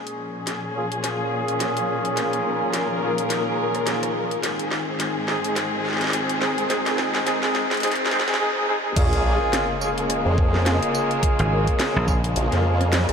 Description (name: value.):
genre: glitch hop.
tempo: 106 BPM.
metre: 4/4.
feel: swing 57% on 16ths.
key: Bb minor.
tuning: A4 = 442 Hz.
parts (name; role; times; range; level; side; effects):
dark chamber string section; sustained chords; 0.0-13.1 s; Ab2 to Bb4; -27 LUFS; left 2 dB; sidechain pumping, low-pass filter.
deep dark ambient pad; texture; 1.4-8.4 s; Ab2 to F5; -32 LUFS; equal; chorus, built-in reverb, sidechain pumping.
drum and bass drum kit; drums; 0.1-13.1 s; crash cymbal, hi-hat, rim click, snare drum, tambourine; -27 LUFS; equal; high-pass filter on hats, high-pass filter on snare, high-pass filter on cymbals, high-pass filter on perc, high-pass filter on room.
mellow horn section; stabs; 0.8-13.1 s; Ab3 to Ab4; -25 LUFS; equal; sidechain pumping, low-pass filter, ping-pong delay.
formant-sweep wobble bass; bass; 9.0-13.1 s; Bb1 to F2; -21 LUFS; equal; chorus.
electronic kick drum; drums; 9.0-12.2 s; none; -22 LUFS; equal; none.
sub drop; sound effects; 9.0-11.2 s; none; -31 LUFS; equal; none.
dry thumbed slap bass; bass; 11.4-12.3 s; Ab1 to Bb1; -21 LUFS; equal; none.
room: wet huge ambient reverb, RT60 4.4 s.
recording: dreamy mix soaked in reverb, high-pass filter.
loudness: -20 LUFS.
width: side -6 dB against mid.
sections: 0.0-9.0 A section; 9.0-13.1 B section.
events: build-up 0.0-9.0; drum fill 0.0-8.4; filter sweep on horn section 0.0-9.0; filter sweep on string section 0.0-9.0; drop 9.0-13.1; impact 9.0-11.2.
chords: 0.0 Bbm7; 4.4 Ab; 9.0 Bbm7.